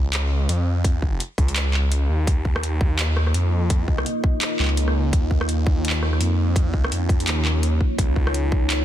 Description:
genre	half-time drum and bass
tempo	168 BPM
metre	4/4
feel	swing 58% on 16ths, half-time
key	unclear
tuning	A4 = 440 Hz
part	phased detuned saw bass	bass	0.0-8.8 s	Db2 to F2	-21 LUFS	equal	phaser
part	drum and bass drum kit	drums	0.1-8.8 s	handclaps, hi-hat, rim click	-26 LUFS	equal	none
part	electronic kick drum	drums	0.8-8.6 s	none	-20 LUFS	equal	none
part	deep dark ambient pad	sustained chords	3.2-8.8 s	Ab3 to Eb5	-27 LUFS	equal	chorus, built-in reverb, vintage 12-bit sampler grit, sidechain pumping
room	little or no reverb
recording	dense, heavily limited modern master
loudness	-19 LUFS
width	side -12 dB against mid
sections	0.0-8.8 A section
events	kick drops out 1.9-2.3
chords	0.0 Db; 2.3 Ebsus2; 8.0 Dbadd9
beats	0.13 0.49 | 0.85 1.20 1.56 1.92 | 2.27 2.63 2.99 3.35 | 3.70 4.06 4.42 4.78 | 5.13 5.49 5.85 6.20 | 6.56 6.92 7.28 7.63 | 7.99 8.35 8.70

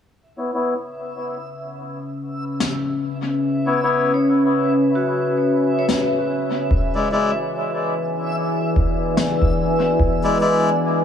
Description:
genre	ambient dub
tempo	73 BPM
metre	4/4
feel	swing 59% on 16ths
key	unclear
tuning	A4 = 440 Hz
part	deep dark ambient pad	sustained chords	1.9-11.0 s	C#4 to B5	-20 LUFS	left 1 dB	chorus, built-in reverb
part	backwards swelling texture	texture	1.0-11.0 s	E5	-30 LUFS	right 2 dB	built-in reverb
part	melodica	stabs	0.4-10.7 s	G#3 to D5	-23 LUFS	left 3 dB	low-pass filter, dub echo
part	snare drum	drums	2.6-9.4 s	none	-26 LUFS	left 2 dB	dub echo
part	vibraphone with hard mallets	arpeggios	4.1-7.9 s	F#4 to C#5	-28 LUFS	right 2 dB	low-pass filter, analog delay
part	electronic kick drum	drums	6.7-10.2 s	none	-20 LUFS	equal	none
room	wet spring reverb, RT60 2.7 s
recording	echo-heavy mix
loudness	-18 LUFS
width	side -8 dB against mid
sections	0.1-11.0 A section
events	filter sweep on melodica 0.1-11.0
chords	0.1 C#m7; 6.7 E7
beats	| 0.13 0.95 1.78 2.60 | 3.42 4.24 5.07 5.89 | 6.71 7.53 8.35 9.17 | 10.00 10.82

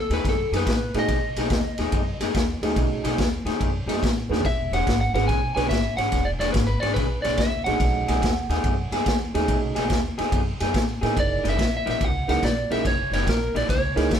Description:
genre	electric blues shuffle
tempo	143 BPM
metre	4/4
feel	swing 66% on 8ths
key	B mixolydian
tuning	A4 = 438 Hz
part	lightly driven lead guitar	melody	0.0-14.2 s	A4 to G#5	-27 LUFS	right 1 dB	none
part	upright bass	bass	0.0-14.2 s	E1 to A2	-28 LUFS	equal	none
part	electric guitar through a small old amp	riff	0.1-14.2 s	F#2 to C#5	-27 LUFS	left 3 dB	none
part	raw garage drum kit	drums	0.1-14.2 s	kick drum, ride cymbal, snare drum, toms	-25 LUFS	equal	none
part	dark upright piano	accompaniment	0.9-14.1 s	A3 to B4	-28 LUFS	right 6 dB	none
room	light reverb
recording	band playing live in one room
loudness	-21 LUFS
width	side -8 dB against mid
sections	0.0-14.2 A section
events	drum fill 4.2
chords	0.0 B13; 4.4 E13; 7.8 B13; 11.2 F#13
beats	0.24 0.66 | 1.08 1.50 1.92 2.34 | 2.76 3.18 3.60 4.02 | 4.44 4.86 5.28 5.70 | 6.12 6.54 6.96 7.38 | 7.80 8.22 8.64 9.06 | 9.48 9.90 10.32 10.74 | 11.16 11.58 12.00 12.42 | 12.84 13.26 13.68 14.10

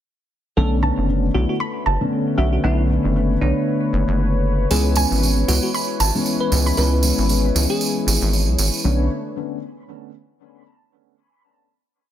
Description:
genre	deep house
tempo	116 BPM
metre	4/4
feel	swing 57% on 16ths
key	B dorian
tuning	A4 = 441 Hz
part	bell-like FM electric piano	melody	0.6-8.2 s	D4 to B4	-27 LUFS	right 1 dB	chorus, cassette tape, tape echo
part	warm analog pad	sustained chords	0.6-9.1 s	D3 to C#5	-28 LUFS	left 2 dB	chorus
part	felt-muted upright piano	stabs	0.6-9.0 s	D3 to C#5	-22 LUFS	left 2 dB	ping-pong delay
part	rubbery square bass	bass	0.6-9.1 s	F#1 to C#2	-19 LUFS	equal	none
part	soft round pluck	melody	0.8-7.7 s	E5 to B5	-27 LUFS	right 2 dB	wide subtle chorus, dub echo
part	tambourine	percussion	4.7-8.8 s	none	-24 LUFS	right 5 dB	none
room	light reverb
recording	dense, heavily limited modern master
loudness	-17 LUFS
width	side -11 dB against mid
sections	0.6-8.8 drop; 8.8-10.9 final chord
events	drop 0.6-8.8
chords	0.6 Bm9; 4.7 C#m7; 8.8 Bm9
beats	| 0.57 1.09 1.60 2.12 | 2.64 3.15 3.67 4.19 | 4.71 5.22 5.74 6.26 | 6.78 7.29 7.81 8.33 | 8.85

